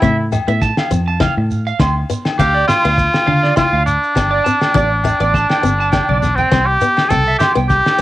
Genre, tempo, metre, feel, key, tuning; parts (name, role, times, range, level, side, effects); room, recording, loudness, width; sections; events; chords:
highlife guitar band; 102 BPM; 4/4; swing 54% on 16ths; C major; A4 = 437 Hz
clear trumpet; melody; 0.0-8.0 s; C4 to A4; -15 LUFS; equal; cassette tape, plate reverb
picked swing-style acoustic guitar; accompaniment; 0.0-8.0 s; A3 to E4; -22 LUFS; left 5 dB; cassette tape
electric guitar at the edge of break-up; arpeggios; 0.0-7.7 s; D5 to C6; -21 LUFS; right 6 dB; cassette tape, plate reverb
fingered electric bass; bass; 0.0-7.8 s; G1 to D3; -18 LUFS; equal
cloth-damped thuddy drum kit; drums; 0.0-8.0 s; kick drum, snare drum; -19 LUFS; equal; cassette tape
congas; percussion; 0.0-8.0 s; -23 LUFS; left 4 dB
shekere; percussion; 0.0-8.0 s; -26 LUFS; right 3 dB
agogo bells; percussion; 0.3-8.0 s; -26 LUFS; left 8 dB
light reverb; home recording on cassette; -12 LUFS; side -15 dB against mid
0.0-8.0 A section
drum fill 5.9-6.5
0.0 Fmaj7; 1.8 Dm7; 4.2 Gsus2; 6.5 C5